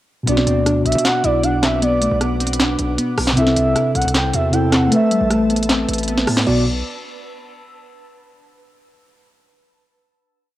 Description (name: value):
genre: hip hop, trap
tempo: 155 BPM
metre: 4/4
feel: half-time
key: B phrygian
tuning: A4 = 439 Hz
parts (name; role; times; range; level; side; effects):
- mellow tine electric piano; accompaniment; 0.2-6.6 s; B2 to E5; -20 LUFS; left 1 dB; medium stereo tremolo, cassette tape
- glassy digital keys; melody; 0.3-6.6 s; G3 to F#4; -21 LUFS; equal; chorus, cassette tape
- gliding portamento lead; second line; 0.3-6.6 s; D5 to G5; -21 LUFS; right 2 dB; chorus, cassette tape, analog delay
- glassy FM pad; sustained chords; 0.9-6.6 s; B4 to E6; -33 LUFS; right 1 dB; ensemble chorus, built-in reverb, cassette tape
- hard-hitting 808-style bass; bass; 0.3-6.8 s; A1 to B2; -24 LUFS; equal; none
- trap drum kit; drums; 0.3-6.6 s; crash cymbal, handclaps, hi-hat, rim click, snare drum; -20 LUFS; equal; cassette tape
room: light reverb, digital ambience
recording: home recording on cassette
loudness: -14 LUFS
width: side -15 dB against mid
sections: 0.3-6.5 hook; 6.5-8.0 final chord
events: none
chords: 0.3 Bm; 3.4 C6; 4.9 Asus2; 6.5 Bm